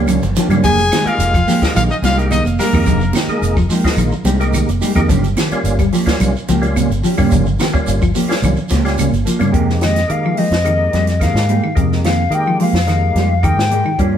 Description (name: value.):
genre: afrobeat.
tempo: 108 BPM.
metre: 4/4.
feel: straight.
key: F minor.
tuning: A4 = 440 Hz.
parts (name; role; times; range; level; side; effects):
percussive tonewheel organ; accompaniment; 0.0-14.2 s; G3 to Ab4; -23 LUFS; equal; slow rotary speaker, chorus vibrato.
mellow electric guitar; stabs; 0.0-14.2 s; F3 to G4; -23 LUFS; right 3 dB; phaser.
fingered electric bass; bass; 0.0-14.2 s; F1 to Eb3; -17 LUFS; equal; none.
electric guitar at the edge of break-up; arpeggios; 0.1-14.0 s; C3 to Ab3; -20 LUFS; left 2 dB; phaser.
compact cocktail drum kit; drums; 0.1-14.1 s; hi-hat, kick drum, snare drum; -20 LUFS; equal; none.
claves; percussion; 0.1-14.0 s; none; -33 LUFS; right 1 dB; none.
congas; percussion; 0.1-9.5 s; none; -21 LUFS; right 4 dB; none.
shekere; percussion; 0.1-9.5 s; none; -28 LUFS; right 4 dB; none.
clear trumpet; melody; 0.6-3.4 s; Bb4 to Ab5; -19 LUFS; left 3 dB; tape echo.
breathy alto saxophone; second line; 0.6-3.4 s; Bb3 to Ab4; -24 LUFS; right 2 dB; none.
jazz flute; melody; 9.8-14.0 s; Eb5 to G5; -19 LUFS; left 4 dB; none.
room: moderate stone room reverb, RT60 1.0 s.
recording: band playing live in one room.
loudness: -12 LUFS.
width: side -9 dB against mid.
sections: 0.0-9.5 A section; 9.5-14.2 B section.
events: drum fill 0.0-0.6; flute solo 9.5-14.2.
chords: 0.0 Gm7b5; 0.6 Fm11; 5.1 Gm7b5; 9.5 Fm11.